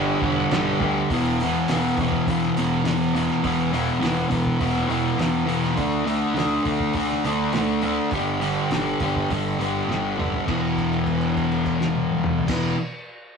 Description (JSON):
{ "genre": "garage rock duo or trio", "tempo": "102 BPM", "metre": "4/4", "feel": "straight", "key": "unclear", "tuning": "A4 = 440 Hz", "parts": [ { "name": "fuzz guitar", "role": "riff", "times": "0.0-12.8 s", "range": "E2 to D4", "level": "-21 LUFS", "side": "left 1 dB", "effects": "distortion" }, { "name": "overdriven picked electric bass", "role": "bass", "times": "0.0-12.7 s", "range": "E1 to D2", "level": "-34 LUFS", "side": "right 1 dB", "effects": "none" }, { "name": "cloth-damped thuddy drum kit", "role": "drums", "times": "0.2-12.6 s", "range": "crash cymbal, hi-hat, kick drum, snare drum, toms", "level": "-30 LUFS", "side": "right 2 dB", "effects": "none" } ], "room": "moderate small room reverb, RT60 0.5 s", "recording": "rough rehearsal-room recording", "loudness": "-20 LUFS", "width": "side -5 dB against mid", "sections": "0.0-1.1 A section; 1.1-10.5 B section; 10.5-12.8 C section", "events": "drum fill 9.9-10.5; held note 10.5-12.5", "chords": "0.0 G; 1.1 E5; 5.8 D5; 8.1 G5; 10.5 E5" }